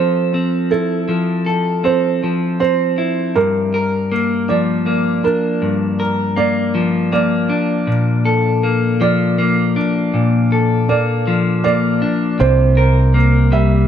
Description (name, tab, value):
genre	post-rock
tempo	53 BPM (dotted quarters)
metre	6/8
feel	straight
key	G dorian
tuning	A4 = 440 Hz
part	clean electric guitar	arpeggios	0.0-13.9 s	G2 to Bb4	-15 LUFS	left 2 dB	analog delay
part	felt-muted upright piano	arpeggios	0.0-13.9 s	A4 to E5	-20 LUFS	right 6 dB	analog delay
part	modern bright fingered electric bass	bass	12.4-13.9 s	C2	-12 LUFS	equal	none
room	light reverb, small room ambience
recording	none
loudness	-14 LUFS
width	side -9 dB against mid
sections	0.0-3.4 A section; 3.4-13.9 A section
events	none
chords	0.0 Fmaj7; 3.4 Gm7; 7.9 Bbmaj7; 12.4 C7